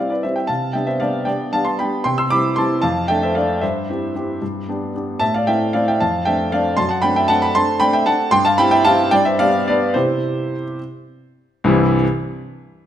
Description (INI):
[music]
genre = classical-period piano sonatina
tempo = 70-78 BPM (dotted quarters)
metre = 6/8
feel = straight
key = C major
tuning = A4 = 440 Hz
[part]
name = clear grand piano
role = solo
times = 0.0-12.0 s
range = C2 to E6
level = -16 LUFS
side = equal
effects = none
[sound]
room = wet recital hall reverb, RT60 1.5 s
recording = none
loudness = -16 LUFS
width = side -10 dB against mid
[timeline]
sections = 0.0-11.6 A section; 11.6-12.9 B section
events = none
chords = 0.5 G7/C; 2.0 C; 2.8 Dm/F; 3.6 C/G; 4.4 G; 5.2 Am; 6.0 Dm7/F; 6.8 D7/F#; 8.3 C/G; 9.1 G; 9.9 C